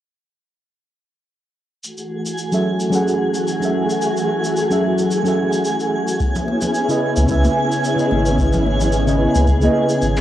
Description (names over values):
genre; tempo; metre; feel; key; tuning
sunset chillout; 110 BPM; 4/4; swing 54% on 16ths; F# dorian; A4 = 440 Hz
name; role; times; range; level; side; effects
soft string machine; sustained chords; 1.8-10.2 s; E3 to F#4; -22 LUFS; equal; ensemble chorus, cassette tape, plate reverb
shaker and toms; drums; 1.8-10.2 s; none; -31 LUFS; equal; cassette tape
twinkling granular texture; texture; 2.0-10.2 s; G#4 to G#5; -23 LUFS; equal; built-in reverb, cassette tape, plate reverb
mellow FM electric piano; accompaniment; 2.5-10.2 s; C#3 to F#5; -20 LUFS; right 1 dB; chorus, phaser, auto-pan, low-pass filter, cassette tape, analog delay, plate reverb
electronic kick drum; drums; 6.2-9.6 s; none; -22 LUFS; equal; cassette tape
congas; percussion; 6.4-9.7 s; none; -25 LUFS; left 1 dB; none
warm sub bass; bass; 7.2-10.2 s; G#1 to C#2; -18 LUFS; equal; tube saturation
room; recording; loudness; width
wet small room reverb, RT60 0.5 s; home recording on cassette; -15 LUFS; side -12 dB against mid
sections
1.8-10.2 A section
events
kick drops out 10.0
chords
1.8 F#m9; 6.2 C#m9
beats
| 1.84 2.38 2.93 3.48 | 4.02 4.57 5.11 5.66 | 6.20 6.75 7.29 7.84 | 8.38 8.93 9.48 10.02